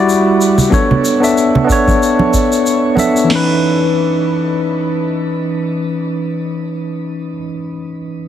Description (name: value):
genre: sunset chillout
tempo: 93 BPM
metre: 4/4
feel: swing 56% on 16ths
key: unclear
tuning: A4 = 440 Hz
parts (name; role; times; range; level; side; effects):
- bright tine electric piano; accompaniment; 0.0-8.3 s; E3 to F#5; -13 LUFS; equal; auto-pan, ping-pong delay, shimmer reverb
- shaker; drums; 0.1-3.3 s; none; -23 LUFS; equal; none
- congas; percussion; 0.6-3.1 s; none; -16 LUFS; right 3 dB; none
- soft vintage rhythm box; drums; 0.7-3.5 s; crash cymbal, kick drum, snare drum; -18 LUFS; equal; none
room: moderate plate reverb, RT60 1.6 s, small room ambience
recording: heavily compressed radio sound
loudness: -12 LUFS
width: side -10 dB against mid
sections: 0.0-3.3 A section; 3.3-5.9 B section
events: none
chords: 0.0 Em9; 0.7 Bm9; 3.3 C#m9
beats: 0.07 | 0.72 1.36 2.01 2.65 | 3.30 3.94 4.59 5.24